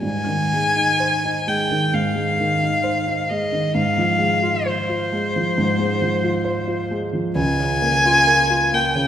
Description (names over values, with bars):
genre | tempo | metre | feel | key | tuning
classical, romantic duo for violin and grand piano | 66 BPM | 4/4 | rubato | Ab major | A4 = 438 Hz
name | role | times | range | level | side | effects
rich violin | melody | 0.0-9.1 s | C5 to Ab5 | -19 LUFS | left 1 dB | none
warm grand piano | accompaniment | 0.0-9.1 s | Db2 to C5 | -21 LUFS | right 1 dB | none
room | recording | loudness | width
wet concert hall reverb, RT60 2.6 s | none | -17 LUFS | side -10 dB against mid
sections
0.0-9.1 A section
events
none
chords
0.0 Ab; 3.8 Fm/Ab; 7.4 Bbm/Db